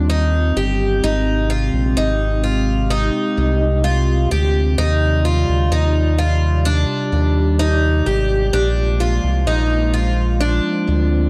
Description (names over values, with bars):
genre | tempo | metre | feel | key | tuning
dream pop | 64 BPM | 4/4 | straight | Eb major | A4 = 440 Hz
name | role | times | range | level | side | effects
warbly tape-like pad | sustained chords | 0.0-11.3 s | C3 to D5 | -25 LUFS | equal | chorus, built-in reverb
picked twelve-string acoustic guitar | arpeggios | 0.0-11.3 s | D4 to G4 | -23 LUFS | equal | subtle chorus, tape echo
round analog bass | bass | 0.0-11.3 s | G1 to Eb2 | -20 LUFS | equal | tube saturation
room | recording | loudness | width
small room ambience | dry, gritty hardware recording, cassette tape | -17 LUFS | mono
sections
0.0-11.3 A section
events
none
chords
0.0 Ebadd9; 1.0 Abmaj7; 4.8 Ebmaj9; 8.5 Bb7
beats
0.10 | 1.04 1.98 2.91 3.85 | 4.79 5.72 6.66 7.60 | 8.54 9.47 10.41